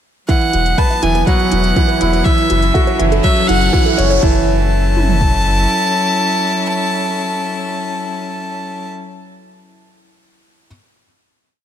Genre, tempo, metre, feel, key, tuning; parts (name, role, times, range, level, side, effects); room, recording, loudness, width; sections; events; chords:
piano and strings electronica; 122 BPM; 4/4; straight; F# minor; A4 = 440 Hz
clear violin; melody; 0.3-8.9 s; E5 to A5; -18 LUFS; left 1 dB; tape echo
muted string quartet; sustained chords; 0.3-8.9 s; F#3 to B4; -22 LUFS; left 1 dB; sidechain pumping
warbly dusty pluck; arpeggios; 0.3-4.5 s; E4 to E5; -24 LUFS; right 2 dB; chorus, sidechain pumping, tape echo
bright upright piano; riff; 0.3-10.7 s; E3 to B4; -18 LUFS; right 2 dB; tape echo
organic electronic drum kit; drums; 0.3-5.3 s; kick drum, toms; -15 LUFS; equal
organic electronic drum kit; drums; 0.3-4.3 s; crash cymbal, hi-hat; -31 LUFS; left 4 dB
riser; sound effects; 2.1-4.2 s; -27 LUFS; right 2 dB
warm sub bass; bass; 0.5-5.7 s; E1 to F#1; -16 LUFS; equal; sidechain pumping
light reverb; -12 LUFS; side -10 dB against mid
0.3-4.2 build; 4.2-8.2 final chord
build-up 0.3-4.2; riser 2.1-4.2
0.3 Esus2; 2.3 F#m7